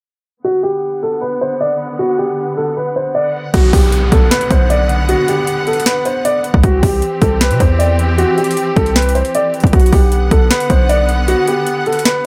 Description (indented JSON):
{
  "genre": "hip hop, trap",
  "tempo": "155 BPM",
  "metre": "4/4",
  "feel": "half-time",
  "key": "B phrygian",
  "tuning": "A4 = 442 Hz",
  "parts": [
    { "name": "dark concert grand piano", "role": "melody", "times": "0.4-12.2 s", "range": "F#4 to D5", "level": "-18 LUFS", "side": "equal", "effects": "digital delay" },
    { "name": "rich studio string section", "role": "sustained chords", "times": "0.4-12.3 s", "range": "D3 to F#5", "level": "-24 LUFS", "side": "equal", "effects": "none" },
    { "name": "hard-hitting 808-style bass", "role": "bass", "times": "3.5-11.3 s", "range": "B1 to C3", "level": "-16 LUFS", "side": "equal", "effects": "none" },
    { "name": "trap drum kit", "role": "drums", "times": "3.5-12.1 s", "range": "crash cymbal, hi-hat, kick drum, snare drum", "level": "-17 LUFS", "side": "equal", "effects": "overdrive" },
    { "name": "downlifter", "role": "sound effects", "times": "3.5-6.6 s", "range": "none", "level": "-29 LUFS", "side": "equal", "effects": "none" }
  ],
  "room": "little or no reverb",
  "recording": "low-pass filter",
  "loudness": "-14 LUFS",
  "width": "mono",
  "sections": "0.4-3.5 A section; 3.5-12.3 B section",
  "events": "filter sweep 0.4-3.5",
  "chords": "0.4 Bm; 6.6 C; 9.7 Bm",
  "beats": "| 0.44 0.83 1.22 1.60 | 1.99 2.38 2.76 3.15 | 3.54 3.92 4.31 4.70 | 5.09 5.47 5.86 6.25 | 6.63 7.02 7.41 7.80 | 8.18 8.57 8.96 9.35 | 9.73 10.12 10.51 10.89 | 11.28 11.67 12.05"
}